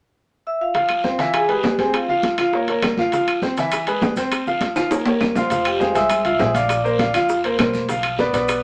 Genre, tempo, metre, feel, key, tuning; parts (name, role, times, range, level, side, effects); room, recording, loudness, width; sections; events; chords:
latin, salsa; 202 BPM; 4/4; straight; F harmonic minor; A4 = 440 Hz
vibraphone with medium mallets; melody; 0.5-2.6, 5.4-7.1 s; F4 to E6; -23 LUFS; equal
bongos; percussion; 0.7-8.6 s; -30 LUFS; equal
congas; percussion; 0.7-8.6 s; -33 LUFS; equal
guiro; percussion; 0.7-8.6 s; -36 LUFS; equal
timbales; percussion; 0.7-8.6 s; -27 LUFS; equal
bright upright piano; accompaniment; 0.8-8.6 s; E3 to F5; -23 LUFS; equal
claves; percussion; 0.9-8.6 s; -32 LUFS; equal
maracas; percussion; 3.1-8.6 s; -44 LUFS; equal
upright bass; bass; 5.5-8.6 s; F1 to F2; -32 LUFS; equal
wet studio ambience, RT60 0.5 s; -20 LUFS; mono
0.7-5.5 A section; 5.5-8.6 B section
drum fill 4.8-5.5
0.0 N.C.; 0.7 F5; 1.3 E; 1.9 F5; 2.5 Bbm; 3.1 F5; 3.7 E; 4.3 F5; 4.9 Bbm; 5.5 Fmadd9; 6.7 Bbadd9; 7.9 Dm6/B